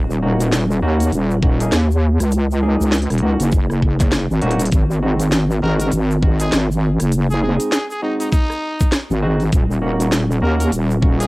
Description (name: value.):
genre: glitch hop.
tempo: 100 BPM.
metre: 4/4.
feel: swing 60% on 16ths.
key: Eb dorian.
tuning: A4 = 440 Hz.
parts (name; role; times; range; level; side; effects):
wobble bass; bass; 0.0-11.3 s; Eb1 to Eb2; -16 LUFS; equal; chorus, overdrive.
egg shaker; percussion; 0.1-11.3 s; none; -35 LUFS; left 2 dB; none.
barky tine electric piano; stabs; 0.2-11.3 s; Ab3 to Ab4; -24 LUFS; equal; overdrive, lush chorus, sidechain pumping, cassette tape, tape echo.
drum and bass drum kit; drums; 0.4-11.3 s; hi-hat, rim click, snare drum; -21 LUFS; equal; cassette tape.
electronic kick drum; drums; 1.4-11.2 s; none; -16 LUFS; equal; cassette tape.
growling trumpet; melody; 5.6-11.3 s; Eb4 to Bb4; -26 LUFS; equal; tape echo.
room: little or no reverb.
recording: home recording on cassette.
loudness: -15 LUFS.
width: side -21 dB against mid.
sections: 0.0-11.3 A section.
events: drum fill 4.4.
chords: 0.0 Ebm7; 4.7 Ab7; 9.5 Ebm7.